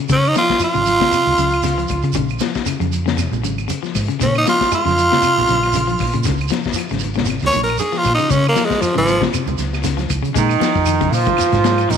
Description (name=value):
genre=afrobeat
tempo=117 BPM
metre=4/4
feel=swing 56% on 16ths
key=Bb minor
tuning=A4 = 440 Hz
part: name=electric guitar at the edge of break-up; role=arpeggios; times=0.0-12.0 s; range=Bb2 to Ab3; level=-24 LUFS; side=left 9 dB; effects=none
part: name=raspy tenor saxophone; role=melody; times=0.1-9.2 s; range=F3 to Db5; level=-16 LUFS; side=right 2 dB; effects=none
part: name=hollow-body short-scale fingered electric bass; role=bass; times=0.1-12.0 s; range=Ab1 to Db3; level=-21 LUFS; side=equal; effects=none
part: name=crunchy breakbeat drum kit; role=drums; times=0.1-12.0 s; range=hi-hat, kick drum, snare drum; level=-24 LUFS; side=left 7 dB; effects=none
part: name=congas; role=percussion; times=0.1-12.0 s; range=none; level=-28 LUFS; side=right 12 dB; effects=none
part: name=shekere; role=percussion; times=0.1-12.0 s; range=none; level=-28 LUFS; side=right 7 dB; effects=none
part: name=claves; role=percussion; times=0.3-11.9 s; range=none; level=-34 LUFS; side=right 14 dB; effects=none
part: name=warm trombone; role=melody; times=10.4-12.0 s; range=Eb4 to F4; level=-19 LUFS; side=right 1 dB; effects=none
part: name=clear baritone saxophone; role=second line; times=10.4-12.0 s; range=Eb3 to F3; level=-19 LUFS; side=right 12 dB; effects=none
room=moderate echo chamber reverb, RT60 1.9 s, small room ambience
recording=1960s-style stereo with parts hard left and right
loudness=-15 LUFS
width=side -7 dB against mid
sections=0.0-10.4 A section; 10.4-12.0 B section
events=tenor saxophone solo 0.0-10.4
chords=0.0 Bbm7; 10.4 Bb7(no3)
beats=| 0.10 0.61 1.13 1.64 | 2.15 2.67 3.18 3.69 | 4.21 4.72 5.23 5.75 | 6.26 6.77 7.28 7.80 | 8.31 8.82 9.33 9.85 | 10.36 10.87 11.38 11.89